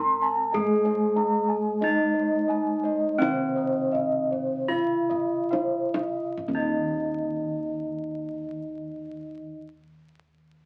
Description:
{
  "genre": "Javanese gamelan",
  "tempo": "35-50 BPM",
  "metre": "4/4",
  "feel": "straight",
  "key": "Eb pelog barang",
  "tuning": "A4 = 440 Hz",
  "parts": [
    { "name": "gamelan-type bronze metallophone", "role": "melody", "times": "0.0-9.6 s", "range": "C4+20c to Bb4-40c", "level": "-30 LUFS", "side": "equal", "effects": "none" },
    { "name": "gamelan-type bronze metallophone", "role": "accompaniment", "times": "0.0-9.6 s", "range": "C3+20c to C4+20c", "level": "-36 LUFS", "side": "equal", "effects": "none" },
    { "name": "gamelan-type bossed gongs", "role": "arpeggios", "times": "0.0-9.6 s", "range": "C5+20c to Bb5-40c", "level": "-38 LUFS", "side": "equal", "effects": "none" },
    { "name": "gamelan-type bronze metallophone", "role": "arpeggios", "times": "0.0-9.6 s", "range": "C5+20c to C6+20c", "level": "-31 LUFS", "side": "equal", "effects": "none" },
    { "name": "gamelan-type bossed gongs", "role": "bass", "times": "0.0-9.5 s", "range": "Eb2 to Ab4+30c", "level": "-39 LUFS", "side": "equal", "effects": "none" },
    { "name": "kendang", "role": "percussion", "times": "0.5-7.2 s", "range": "none", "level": "-34 LUFS", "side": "equal", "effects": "none" }
  ],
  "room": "wet small room reverb, RT60 0.5 s",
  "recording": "very old 78 rpm record, vinyl crackle",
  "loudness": "-26 LUFS",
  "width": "mono",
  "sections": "0.0-6.4 A section; 6.4-10.7 B section",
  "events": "slowing down 0.0-6.4; drum fill 4.3-6.4",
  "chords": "none"
}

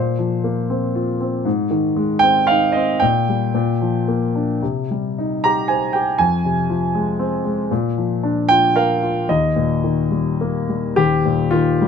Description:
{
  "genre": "classical, lyrical solo piano",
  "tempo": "101-121 BPM",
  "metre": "3/4",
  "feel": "rubato",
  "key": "Eb major",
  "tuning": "A4 = 440 Hz",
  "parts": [
    { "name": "warm grand piano", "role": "solo", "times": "0.0-11.9 s", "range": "Eb1 to Bb5", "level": "-16 LUFS", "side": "left 1 dB", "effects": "none" }
  ],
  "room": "light reverb",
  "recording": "close, detailed microphones",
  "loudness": "-16 LUFS",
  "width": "side -7 dB against mid",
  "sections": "0.0-11.0 A section",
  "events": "none",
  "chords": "0.0 Bbsus2; 1.5 Ab; 3.0 Gm/Bb; 3.5 Bb; 4.6 Cm; 6.2 Fm; 7.7 Bb; 9.3 Eb"
}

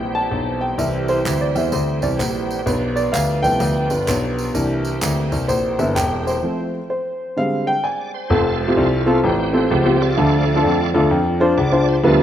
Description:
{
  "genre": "uptempo gospel",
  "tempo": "128 BPM",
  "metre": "4/4",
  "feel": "swing 64% on 8ths",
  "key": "F major",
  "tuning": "A4 = 435 Hz",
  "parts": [
    { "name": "bright tonewheel organ", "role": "sustained chords", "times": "0.0-12.2 s", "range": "E3 to D5", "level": "-25 LUFS", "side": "right 5 dB", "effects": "slow rotary speaker, overdrive, chorus vibrato" },
    { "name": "mellow French horn section", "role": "sustained chords", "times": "0.0-6.4 s", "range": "C4 to C5", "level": "-28 LUFS", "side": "right 3 dB", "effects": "none" },
    { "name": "warm grand piano", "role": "bass", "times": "0.0-12.2 s", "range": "E1 to F2", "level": "-20 LUFS", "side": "left 1 dB", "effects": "none" },
    { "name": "warm upright piano", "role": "accompaniment", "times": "0.1-12.2 s", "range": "D3 to A5", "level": "-19 LUFS", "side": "equal", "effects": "none" },
    { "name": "tambourine and handclaps", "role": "percussion", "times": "0.8-6.3 s", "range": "none", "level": "-30 LUFS", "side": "right 3 dB", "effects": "none" }
  ],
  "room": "moderate lush hall reverb, RT60 2.4 s",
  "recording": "rough home demo mix",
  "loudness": "-16 LUFS",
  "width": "side -10 dB against mid",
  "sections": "0.0-8.3 A section; 8.3-12.2 B section",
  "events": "upright piano solo 0.0-8.3; stop 6.4-8.3; tonewheel organ solo 8.3-12.2",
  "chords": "0.0 C; 2.7 G7/B; 4.5 C7; 6.4 F; 7.4 Fm69/D; 8.3 F; 10.2 Dm"
}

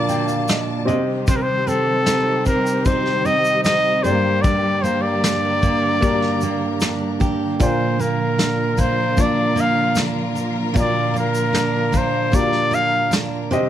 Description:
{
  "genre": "acoustic pop",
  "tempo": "76 BPM",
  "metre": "4/4",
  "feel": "straight",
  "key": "Bb major",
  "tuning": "A4 = 439 Hz",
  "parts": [
    { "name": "breathy trumpet", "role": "melody", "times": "0.0-13.1 s", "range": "A4 to F5", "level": "-20 LUFS", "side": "left 2 dB", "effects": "none" },
    { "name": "dark upright piano", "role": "accompaniment", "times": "0.0-13.7 s", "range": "A3 to G5", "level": "-26 LUFS", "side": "left 2 dB", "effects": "none" },
    { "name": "picked steel-string acoustic guitar", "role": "accompaniment", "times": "0.0-13.7 s", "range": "G2 to Bb4", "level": "-22 LUFS", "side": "right 4 dB", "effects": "none" },
    { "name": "dark studio string section", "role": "sustained chords", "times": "0.0-13.7 s", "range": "D3 to A5", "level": "-26 LUFS", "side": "left 1 dB", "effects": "none" },
    { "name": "vintage brush drum kit", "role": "drums", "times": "0.1-13.7 s", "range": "kick drum, shaker, snare drum", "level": "-21 LUFS", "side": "equal", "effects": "none" }
  ],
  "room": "moderate small room ambience, RT60 0.5 s",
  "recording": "none",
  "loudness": "-16 LUFS",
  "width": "side -11 dB against mid",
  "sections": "0.0-13.7 A section",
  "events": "upright piano fill 0.0-1.3",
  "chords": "0.0 Bb; 0.9 Cm; 4.0 Gm; 7.6 Bb"
}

